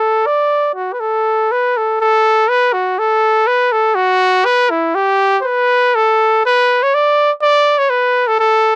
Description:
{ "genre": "mexican folk", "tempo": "122 BPM", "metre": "2/4", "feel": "rubato", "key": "unclear", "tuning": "A4 = 440 Hz", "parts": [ { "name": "clear trumpet", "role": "solo", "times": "0.0-8.8 s", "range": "E4 to D5", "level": "-11 LUFS", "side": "equal", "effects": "none" } ], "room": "light reverb", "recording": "dry, close 1970s-style studio recording", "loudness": "-11 LUFS", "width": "side -22 dB against mid", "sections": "0.0-1.5 A section; 1.5-8.8 B section", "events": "none", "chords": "none", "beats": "0.01 | 0.50 0.99 | 1.50 2.00 | 2.50 2.99 | 3.49 3.98 | 4.46 4.96 | 5.46 5.96 | 6.45 6.94 | 7.43 7.92 | 8.41" }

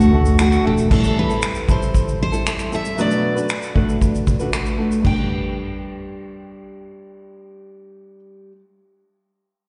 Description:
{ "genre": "acoustic pop", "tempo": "116 BPM", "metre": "4/4", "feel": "straight", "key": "G major", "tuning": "A4 = 440 Hz", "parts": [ { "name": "picked steel-string acoustic guitar", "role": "melody", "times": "0.0-8.2 s", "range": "F#4 to G5", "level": "-27 LUFS", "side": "equal", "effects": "slapback echo" }, { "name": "nylon-string guitar", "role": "accompaniment", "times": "0.0-8.6 s", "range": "A2 to B4", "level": "-24 LUFS", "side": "equal", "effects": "slapback echo" }, { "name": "upright bass", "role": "bass", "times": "0.0-0.9 s", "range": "E1 to D2", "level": "-18 LUFS", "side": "equal", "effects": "none" }, { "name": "natural country drum kit", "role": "drums", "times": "0.0-5.2 s", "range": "crash cymbal, finger snaps, kick drum, shaker", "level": "-23 LUFS", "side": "equal", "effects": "none" } ], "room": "light reverb, small room ambience", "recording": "live gig heard through the venue's PA, recital hall reverb, nothing above 10.8 kHz", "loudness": "-19 LUFS", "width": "mono", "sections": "0.9-5.0 A section; 5.0-9.2 B section", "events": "none", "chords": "0.0 D; 0.9 Am7; 3.0 Bm7; 5.0 G", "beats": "0.39 | 0.91 1.43 1.94 2.46 | 2.98 3.50 4.01 4.53 | 5.05 5.57 6.09 6.60 | 7.12 7.64 8.16" }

